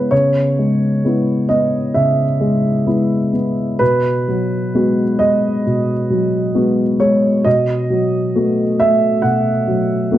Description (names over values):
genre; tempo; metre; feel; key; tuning
neoclassical minimalist piano; 66 BPM; 4/4; rubato; C# minor; A4 = 440 Hz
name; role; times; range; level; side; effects
dark concert grand piano; solo; 0.0-10.2 s; B2 to F#5; -14 LUFS; equal; none
room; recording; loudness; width
light reverb, studio ambience; dry, close 1970s-style studio recording; -14 LUFS; side -12 dB against mid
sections
0.0-10.2 A section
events
none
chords
0.0 C#m7; 3.8 G#m7/B; 7.5 B7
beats
| 0.12 1.05 1.95 2.87 | 3.80 4.74 5.65 6.55 | 7.46 8.35 9.24 10.12